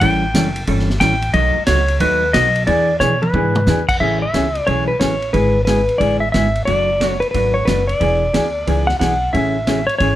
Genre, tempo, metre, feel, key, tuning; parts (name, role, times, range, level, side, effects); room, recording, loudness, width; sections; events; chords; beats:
country, western swing; 180 BPM; 4/4; swing 65% on 8ths; A major; A4 = 440 Hz
clean lap steel guitar; melody; 0.0-10.2 s; B4 to G5; -17 LUFS; left 1 dB; plate reverb
vintage hollow-body jazz guitar; accompaniment; 0.0-10.2 s; B2 to A4; -20 LUFS; equal
upright bass; bass; 0.0-10.2 s; E1 to B2; -20 LUFS; equal
vintage drum kit; drums; 0.0-10.1 s; crash cymbal, hi-hat, kick drum, ride cymbal, snare drum, toms; -25 LUFS; equal
light reverb; -14 LUFS; side -13 dB against mid
0.0-4.0 A section; 4.0-10.2 B section
drum fill 3.0-3.7
0.0 A7; 1.3 B7; 2.7 E7; 4.0 Amaj7; 5.3 E7/G#; 6.7 Bm7/F#; 8.0 E7; 9.3 Amaj7
| 0.01 0.34 0.68 1.01 | 1.34 1.68 2.01 2.34 | 2.67 3.00 3.34 3.67 | 4.00 4.34 4.67 5.00 | 5.34 5.67 6.00 6.34 | 6.67 7.00 7.34 7.67 | 8.01 8.34 8.67 9.00 | 9.34 9.67 10.00